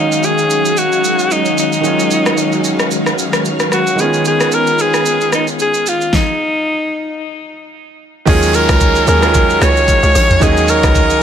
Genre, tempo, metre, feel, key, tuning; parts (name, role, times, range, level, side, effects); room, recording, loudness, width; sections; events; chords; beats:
amapiano; 112 BPM; 4/4; swing 55% on 16ths; Eb minor; A4 = 440 Hz
bright alto saxophone; melody; 0.0-11.2 s; Eb4 to Db5; -15 LUFS; left 1 dB; ping-pong delay
clear grand piano; accompaniment; 0.0-11.2 s; Eb3 to F5; -18 LUFS; right 5 dB
string machine, violins; sustained chords; 0.0-11.2 s; Eb3 to Db6; -19 LUFS; left 1 dB; ensemble chorus, sidechain pumping
smooth R&B drum kit; drums; 0.1-11.2 s; hi-hat, kick drum, rim click, shaker, snare drum, toms; -17 LUFS; equal
hollow log drum bass; bass; 8.3-11.2 s; Bb1 to Eb2; -15 LUFS; equal
downlifter; sound effects; 8.3-11.2 s; -24 LUFS; left 1 dB
light reverb; -11 LUFS; side -8 dB against mid
0.0-8.3 A section; 8.3-11.2 B section
stop 6.1-8.3; drop 8.3-11.2
0.0 Ebm11; 4.0 Db9; 8.3 Ebm11
0.24 0.77 1.31 | 1.84 2.38 2.92 3.45 | 3.99 4.52 5.06 5.59 | 6.13 6.67 7.20 7.74 | 8.27 8.81 9.35 9.88 | 10.42 10.95